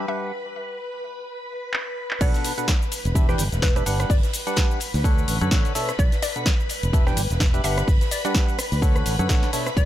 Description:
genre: piano house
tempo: 127 BPM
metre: 4/4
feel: swing 57% on 16ths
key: unclear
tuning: A4 = 438 Hz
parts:
  - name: string machine, violins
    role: sustained chords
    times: 0.0-9.9 s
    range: B4 to B5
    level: -32 LUFS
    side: left 1 dB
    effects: ensemble chorus, sidechain pumping
  - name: percussive organ stab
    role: riff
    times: 0.0-9.7 s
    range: B2 to G5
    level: -28 LUFS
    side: equal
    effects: chorus, sidechain pumping, ping-pong delay
  - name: hollow square pluck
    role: melody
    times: 0.1-9.9 s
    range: B4 to E5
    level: -32 LUFS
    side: left 2 dB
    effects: chorus, ping-pong delay
  - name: house drum kit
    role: drums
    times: 1.7-9.9 s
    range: cabasa, crash cymbal, handclaps, hi-hat, rim click, snare drum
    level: -27 LUFS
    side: equal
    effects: low-pass filter on snare, low-pass filter on cymbals, low-pass filter on perc, low-pass filter on hats
  - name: fingered electric bass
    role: bass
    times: 2.2-9.9 s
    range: E1 to F#2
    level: -24 LUFS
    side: equal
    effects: sidechain pumping
  - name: compact cocktail drum kit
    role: drums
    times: 2.2-9.9 s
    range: hi-hat, ride cymbal, snare drum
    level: -38 LUFS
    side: left 1 dB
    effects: sidechain pumping on cymbals, high-pass filter on cymbals, sidechain pumping on hats, high-pass filter on hats, high-pass filter on snare, high-pass filter on room
  - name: electronic kick drum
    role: drums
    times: 2.2-9.9 s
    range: none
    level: -20 LUFS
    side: equal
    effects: none
room: small room ambience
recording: none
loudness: -19 LUFS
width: side -13 dB against mid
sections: 0.0-2.2 A section; 2.2-9.9 B section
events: break 0.3-2.2; drum fill 1.7-2.2; drop 2.2-9.9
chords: 0.1 Gmaj7; 1.0 N.C.; 2.2 Bm7; 2.9 Em7; 3.9 Gmaj7; 4.8 Dmaj7; 6.0 Bm7; 6.7 Em7; 7.6 Gmaj7; 8.6 Dmaj7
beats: | 0.32 0.79 1.26 1.74 | 2.21 2.68 3.15 3.63 | 4.10 4.57 5.04 5.51 | 5.99 6.46 6.93 7.41 | 7.88 8.35 8.82 9.29 | 9.77

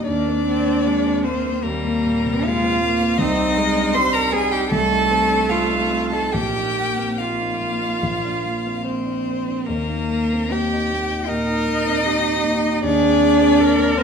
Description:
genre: classical, slow romantic movement for piano quartet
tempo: 67-82 BPM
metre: 4/4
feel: rubato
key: Eb major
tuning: A4 = 435 Hz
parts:
  - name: rich violin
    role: melody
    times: 0.0-14.0 s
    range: Bb4 to C6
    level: -24 LUFS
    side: left 7 dB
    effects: none
  - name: rich cello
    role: second line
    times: 0.0-14.0 s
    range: Bb3 to C5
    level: -20 LUFS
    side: right 3 dB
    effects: none
  - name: clear viola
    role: accompaniment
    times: 0.0-14.0 s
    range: G3 to Bb4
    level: -26 LUFS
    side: right 2 dB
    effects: none
  - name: dark concert grand piano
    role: accompaniment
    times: 0.0-14.0 s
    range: Bb1 to Eb4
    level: -24 LUFS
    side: left 2 dB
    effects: none
room: moderate recital hall reverb, RT60 1.3 s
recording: minimal, uncompressed stereo recording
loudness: -17 LUFS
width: side -6 dB against mid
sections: 0.0-14.0 A section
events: none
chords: 0.0 Eb; 3.2 Cm; 6.3 Bbsus4; 8.0 Bb; 9.7 Eb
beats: | 0.07 0.86 1.63 2.45 | 3.19 3.95 4.71 5.50 | 6.33 7.19 8.02 8.85 | 9.67 10.52 11.29 12.06 | 12.83 13.60

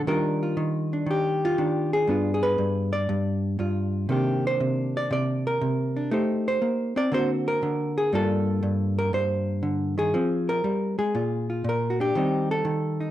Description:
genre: solo jazz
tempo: 119 BPM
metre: 4/4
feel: swing 68% on 8ths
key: G minor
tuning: A4 = 440 Hz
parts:
  - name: hollow-body jazz guitar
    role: solo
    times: 0.0-13.1 s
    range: G2 to D5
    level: -23 LUFS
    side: equal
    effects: none
room: light reverb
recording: none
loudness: -23 LUFS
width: side -13 dB against mid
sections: 0.0-12.1 A section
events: none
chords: 0.1 Ebmaj9; 2.1 G7b9; 4.1 Cm9; 6.1 Am7b5; 7.1 Daug7; 8.1 Gm11; 10.1 Fm; 11.1 Bb7; 12.1 Eb6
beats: | 0.07 0.57 1.07 1.58 | 2.08 2.58 3.09 3.59 | 4.09 4.60 5.10 5.61 | 6.11 6.61 7.12 7.62 | 8.12 8.62 9.13 9.63 | 10.13 10.63 11.14 11.64 | 12.14 12.64

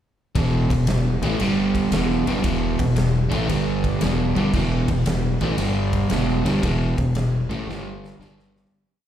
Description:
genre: blues rock power trio and southern rock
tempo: 115 BPM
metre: 4/4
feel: swing 67% on 8ths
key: unclear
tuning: A4 = 441 Hz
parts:
  - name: crunchy overdriven guitar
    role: riff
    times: 0.4-8.7 s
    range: E2 to A3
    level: -20 LUFS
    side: equal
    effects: spring reverb
  - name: gritty driven synth bass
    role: bass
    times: 0.4-8.7 s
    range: E1 to A1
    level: -26 LUFS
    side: equal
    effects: none
  - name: big rock drum kit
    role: drums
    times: 0.4-8.7 s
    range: crash cymbal, kick drum, ride cymbal, snare drum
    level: -28 LUFS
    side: equal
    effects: none
room: light reverb, studio reverb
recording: live gig heard through the venue's PA, club reverb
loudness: -19 LUFS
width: side -10 dB against mid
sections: 0.4-8.7 riff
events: fade-out 6.6-8.7; drum fill 7.7-8.7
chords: 0.4 E5; 1.4 G5; 1.9 E5; 3.5 G5; 4.0 E5; 5.6 G5; 6.1 E5; 7.7 G5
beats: | 0.35 0.88 1.40 1.92 | 2.44 2.96 3.49 4.01 | 4.54 5.06 5.58 6.11 | 6.63 7.15 7.67 8.19

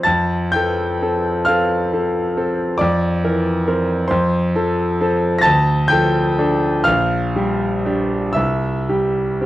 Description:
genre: classical, romantic nocturne for solo piano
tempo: 38-47 BPM (dotted quarters)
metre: 12/8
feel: rubato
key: F major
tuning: A4 = 440 Hz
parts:
  - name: bright concert grand piano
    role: solo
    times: 0.0-9.5 s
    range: Bb1 to Bb6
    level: -16 LUFS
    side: equal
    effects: none
room: light reverb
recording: worn, warbling old tape, cassette tape, warbly pitch drift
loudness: -16 LUFS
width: side -15 dB against mid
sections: 0.1-9.5 A section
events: none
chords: 0.1 F; 2.8 C7/F; 4.1 F; 5.4 Dm; 6.9 Gm/Bb; 8.4 C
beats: | 0.07 1.47 2.79 4.11 | 5.44 6.87 8.36

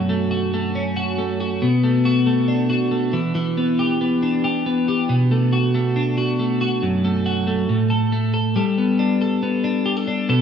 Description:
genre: indie pop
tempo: 138 BPM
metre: 4/4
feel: straight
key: B minor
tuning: A4 = 445 Hz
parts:
  - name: twelve-string electric guitar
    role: solo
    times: 0.0-10.4 s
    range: F#2 to A4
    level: -18 LUFS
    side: equal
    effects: wide subtle chorus
room: wet plate reverb, RT60 3.3 s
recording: rough home demo mix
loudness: -18 LUFS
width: side -7 dB against mid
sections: 0.0-8.6 A section; 8.6-10.4 B section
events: none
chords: 0.0 F#m; 1.6 Bm7; 3.1 Em7; 5.1 Bm7; 6.8 F#m; 7.7 N.C.; 8.6 Gadd9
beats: 0.32 0.76 1.19 | 1.62 2.06 2.49 2.93 | 3.36 3.79 4.23 4.66 | 5.10 5.53 5.96 6.40 | 6.83 7.26 7.70 8.13 | 8.56 8.99 9.43 9.86 | 10.29

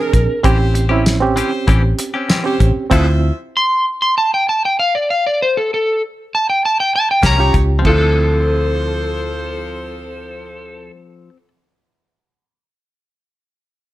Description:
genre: straight-eighth soul blues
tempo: 97 BPM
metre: 4/4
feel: straight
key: D minor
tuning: A4 = 439 Hz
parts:
  - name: electric slide guitar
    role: melody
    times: 0.0-10.9 s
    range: A4 to C6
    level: -16 LUFS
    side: equal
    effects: none
  - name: barky reed electric piano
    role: accompaniment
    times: 0.0-3.3, 7.4-10.9 s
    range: C4 to Ab4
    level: -20 LUFS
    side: right 4 dB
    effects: overdrive, fast tremolo, plate reverb
  - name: bright horn section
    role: sustained chords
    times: 0.0-3.4, 7.2-10.9 s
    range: F3 to E5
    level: -28 LUFS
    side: equal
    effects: none
  - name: direct-recorded clean electric guitar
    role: stabs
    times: 0.1-3.1, 7.2-11.5 s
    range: E3 to A4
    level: -24 LUFS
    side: left 5 dB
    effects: none
  - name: vintage muted fingered electric bass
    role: bass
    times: 0.1-3.3, 7.2-10.9 s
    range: A1 to D2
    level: -16 LUFS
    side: equal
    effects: none
  - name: cloth-damped thuddy drum kit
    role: drums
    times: 0.1-3.1, 7.2-8.0 s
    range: crash cymbal, hi-hat, kick drum, snare drum, tambourine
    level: -17 LUFS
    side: equal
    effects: none
room: light reverb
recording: none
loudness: -13 LUFS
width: side -15 dB against mid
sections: 0.0-7.9 A section; 7.9-10.3 B section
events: none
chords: 0.4 A7#9; 2.9 Dm9; 7.2 Eb7; 7.9 Dm9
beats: | 0.44 1.06 1.68 2.29 | 2.91 3.53 4.15 4.76 | 5.38 6.00 6.62 7.23 | 7.85 8.47 9.09 9.70

